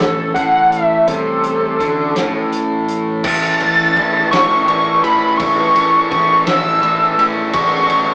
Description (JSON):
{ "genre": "indie rock", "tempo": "56 BPM (dotted quarters)", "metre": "6/8", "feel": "straight", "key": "A major", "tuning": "A4 = 441 Hz", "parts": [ { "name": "hollow square lead", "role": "melody", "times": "0.0-8.1 s", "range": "A4 to A6", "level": "-16 LUFS", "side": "equal", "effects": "chorus" }, { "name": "overdriven electric guitar", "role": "riff", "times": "0.0-8.1 s", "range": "A2 to C#4", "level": "-22 LUFS", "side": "equal", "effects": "none" }, { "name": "twelve-string electric guitar", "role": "riff", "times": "0.0-3.2 s", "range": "E3 to C#4", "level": "-27 LUFS", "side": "equal", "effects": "none" }, { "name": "fuzz picked electric bass", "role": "bass", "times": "0.0-8.1 s", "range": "A1 to A2", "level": "-28 LUFS", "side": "equal", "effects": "overdrive" }, { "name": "vintage drum kit", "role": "drums", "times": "0.0-8.1 s", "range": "crash cymbal, hi-hat, kick drum, ride cymbal, snare drum", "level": "-24 LUFS", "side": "equal", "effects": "none" } ], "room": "moderate studio reverb, RT60 0.5 s", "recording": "rough rehearsal-room recording, small speaker sound", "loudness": "-15 LUFS", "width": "mono", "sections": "0.0-3.2 A section; 3.2-8.1 B section", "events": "none", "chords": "0.0 A; 7.5 F#m/A" }